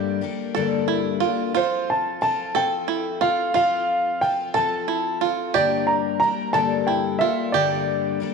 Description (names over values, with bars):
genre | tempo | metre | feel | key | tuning
acoustic folk duo or small band | 60 BPM (dotted quarters) | 6/8 | straight | G dorian | A4 = 440 Hz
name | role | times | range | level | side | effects
warm upright piano | melody | 0.0-8.3 s | C5 to Bb5 | -22 LUFS | right 1 dB | none
picked twelve-string acoustic guitar | accompaniment | 0.0-8.3 s | G2 to A4 | -26 LUFS | left 10 dB | none
bluegrass banjo | arpeggios | 0.0-8.2 s | E4 to A4 | -26 LUFS | right 12 dB | none
room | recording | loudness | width
moderate echo chamber reverb, RT60 2.2 s | 1960s-style stereo with parts hard left and right | -20 LUFS | side -5 dB against mid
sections
0.0-8.3 A section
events
none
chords
0.0 Gmadd9; 1.5 F; 5.5 Gmadd9